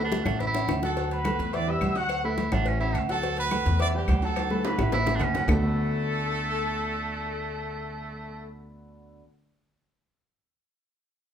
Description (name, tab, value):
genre	latin, salsa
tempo	212 BPM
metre	4/4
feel	straight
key	D major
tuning	A4 = 439 Hz
part	bright baritone saxophone	second line	0.0-8.5 s	A3 to E4	-32 LUFS	right 4 dB	none
part	clear baby grand piano	accompaniment	0.0-9.2 s	D3 to F#5	-32 LUFS	left 1 dB	none
part	upright bass	bass	0.0-9.2 s	A1 to E2	-29 LUFS	equal	none
part	agogo bells and timbales	percussion	0.1-5.5 s	none	-34 LUFS	right 6 dB	none
part	congas	percussion	0.1-5.6 s	none	-34 LUFS	equal	none
part	cowbell and bongos	percussion	0.1-5.6 s	none	-34 LUFS	left 5 dB	none
part	claves	percussion	0.3-5.6 s	none	-40 LUFS	left 4 dB	none
part	warm trumpet section	melody	0.8-8.5 s	F#4 to E6	-31 LUFS	left 1 dB	none
room	moderate large studio reverb, RT60 0.9 s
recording	band playing live in one room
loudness	-24 LUFS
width	side -9 dB against mid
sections	0.0-5.5 A section; 5.5-7.7 B section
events	drum fill 0.0-1.0, 4.4-5.5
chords	0.4 A; 1.0 D6; 1.5 Em7; 2.1 D6; 2.7 A; 3.2 D6; 3.8 Em7; 4.4 A; 5.5 D6